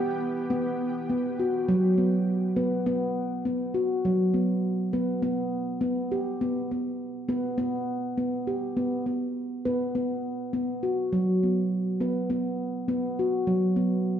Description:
world meditative, meditative tuned percussion; 102 BPM; 4/4; swing 56% on 16ths; A4 = 440 Hz
shimmering ambient pad; sustained chords; 0.0-0.5 s; E3 to G4; -38 LUFS; right 1 dB; chorus, built-in reverb
handpan; arpeggios; 0.0-14.2 s; F#3 to B4; -25 LUFS; equal
wet recital hall reverb, RT60 1.5 s, small room ambience; dark, warm production; -25 LUFS; side -9 dB against mid
0.5-14.2 A section
0.5 B5; 5.2 G/B; 9.9 B5
| 0.50 1.08 1.67 2.26 | 2.85 3.45 4.04 4.63 | 5.22 5.81 6.41 7.00 | 7.59 8.18 8.77 9.36 | 9.95 10.54 11.12 11.71 | 12.30 12.88 13.47 14.06

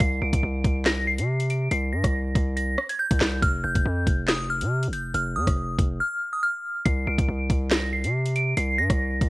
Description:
hip hop, drill; 140 BPM; 4/4; half-time; C minor; A4 = 440 Hz
delicate synth tine bell; melody; 0.0-9.3 s; Eb6 to D7; -27 LUFS; equal; chorus, phaser, tremolo, cassette tape, tape echo
distorted 808-style bass; bass; 0.0-9.3 s; F1 to C3; -26 LUFS; equal; distortion
drill drum kit; drums; 0.0-9.3 s; handclaps, hi-hat, kick drum, rim click, snare drum; -24 LUFS; equal; cassette tape
digital ambience; home recording on cassette; -22 LUFS; side -21 dB against mid
0.0-9.3 A section
drums muted 6.0-6.9
0.0 Csus2; 3.4 F5; 6.9 Csus2
| 0.00 0.43 0.86 1.28 | 1.71 2.14 2.57 3.00 | 3.43 3.86 4.29 4.71 | 5.14 5.57 6.00 6.43 | 6.86 7.29 7.71 8.14 | 8.57 9.00

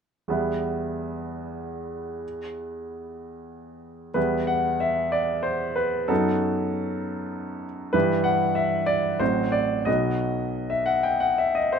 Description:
classical, romantic character piece for solo piano; 94 BPM; 3/4; uneven beats, rubato; E minor; A4 = 441 Hz
bright grand piano; solo; 0.3-11.8 s; A1 to G5; -23 LUFS; equal
moderate studio reverb, RT60 0.6 s; dark, warm production; -22 LUFS; side -6 dB against mid
0.3-4.2 A section; 4.2-11.8 B section
0.3 Em; 6.1 B7/F#; 7.9 Em/G; 9.2 F#dim/A; 9.9 B
| 0.34 0.98 1.61 | 2.23 2.84 3.48 | 4.16 4.81 5.46 | 6.10 6.72 7.33 | 7.95 8.56 9.20 | 9.87 10.54 11.21

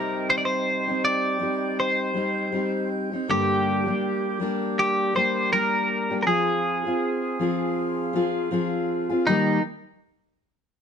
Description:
acoustic pop; 80 BPM; 4/4; swing 55% on 16ths; Eb major; A4 = 439 Hz
twelve-string electric guitar; melody; 0.0-9.6 s; Eb4 to D5; -24 LUFS; right 1 dB
fingerpicked steel-string acoustic guitar; accompaniment; 0.0-9.6 s; G2 to Ab4; -25 LUFS; left 2 dB
breathy mellow small flute group; sustained chords; 0.0-9.6 s; Ab4 to G6; -34 LUFS; right 1 dB
light reverb; band playing live in one room, nothing above 10.4 kHz; -22 LUFS; side -7 dB against mid
0.0-9.3 A section; 9.3-10.8 B section
0.0 Cm; 3.3 Gm; 6.3 Fm; 9.3 Eb
| 0.31 1.06 1.80 2.55 | 3.30 4.04 4.79 5.54 | 6.28 7.03 7.78 8.52 | 9.27

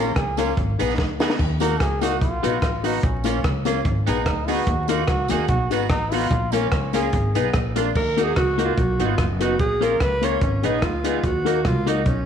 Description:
ska; 146 BPM; 4/4; swing 54% on 8ths; Eb minor; A4 = 436 Hz
brilliant trombone; melody; 0.0-7.3 s; Db4 to Bb4; -27 LUFS; right 1 dB
electric guitar at the edge of break-up; accompaniment; 0.0-12.1 s; Bb3 to Ab4; -28 LUFS; right 9 dB; analog chorus, slapback echo
dark upright piano; stabs; 0.0-12.0 s; Bb3 to Cb5; -25 LUFS; left 8 dB; slapback echo
upright bass; bass; 0.0-12.2 s; F#1 to Eb2; -25 LUFS; equal
compact cocktail drum kit; drums; 0.2-12.2 s; crash cymbal, hi-hat, kick drum, rim click, snare drum, splash cymbal; -25 LUFS; equal
tambourine; percussion; 0.4-7.9 s; -44 LUFS; right 11 dB
breathy alto saxophone; melody; 8.0-12.3 s; Db4 to Db5; -23 LUFS; right 2 dB
moderate echo chamber reverb, RT60 1.4 s, small room reverb; 1960s-style stereo with parts hard left and right, vinyl crackle; -19 LUFS; side -8 dB against mid
0.0-8.0 A section; 8.0-12.3 A section
trombone solo 0.0-8.0; drum fill 1.0-1.4; alto saxophone solo 8.0-12.3
0.0 Bbm; 0.6 Abm; 1.4 Ebm; 2.2 B; 3.0 Bbm; 3.9 Abm; 4.7 Ebm; 5.5 B; 6.3 Bbm; 7.1 Abm; 7.5 Bb; 8.0 Ebm; 8.8 B; 9.6 Bbm; 10.4 Abm; 11.2 Ebm
0.17 0.57 0.98 | 1.39 1.80 2.21 2.62 | 3.03 3.44 3.85 4.26 | 4.67 5.08 5.49 5.90 | 6.31 6.72 7.13 7.54 | 7.95 8.36 8.78 9.19 | 9.60 10.01 10.42 10.83 | 11.24 11.65 12.06

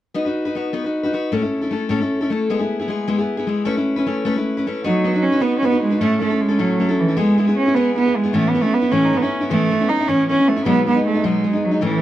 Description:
celtic folk, Celtic jig; 103 BPM (dotted quarters); 6/8; straight; B mixolydian; A4 = 438 Hz
picked steel-string acoustic guitar; accompaniment; 0.1-12.0 s; A2 to B4; -19 LUFS; left 2 dB
warm cello; melody; 4.8-12.0 s; E3 to D#4; -17 LUFS; right 3 dB
light reverb; dark, warm production; -16 LUFS; side -13 dB against mid
0.1-4.8 A section; 4.8-12.0 B section
0.1 B; 1.3 A; 2.5 E/G#; 3.7 Aadd9; 4.8 B; 6.0 A; 7.2 E/G#; 8.3 Aadd9; 10.7 B6
| 0.15 0.74 | 1.32 1.91 | 2.50 3.08 | 3.67 4.25 | 4.84 5.42 | 6.00 6.59 | 7.17 7.75 | 8.34 8.92 | 9.50 10.08 | 10.66 11.24 | 11.82

